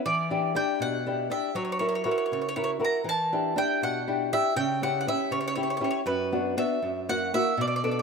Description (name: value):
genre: italian folk, Italian serenade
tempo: 80 BPM (dotted quarters)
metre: 6/8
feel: straight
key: unclear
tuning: A4 = 440 Hz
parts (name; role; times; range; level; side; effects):
- bowl-back mandolin; melody; 0.1-8.0 s; B4 to A#5; -29 LUFS; right 3 dB; none
- flamenco guitar; accompaniment; 0.1-8.0 s; F#2 to A#4; -27 LUFS; left 2 dB; none
room: moderate plate reverb, RT60 2.5 s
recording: rough home demo mix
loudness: -25 LUFS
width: side -5 dB against mid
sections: 0.0-8.0 A section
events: none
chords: 0.1 Em7; 1.6 F#7; 3.1 Em7; 4.6 C#dim; 6.1 Bm/F#; 6.8 F#7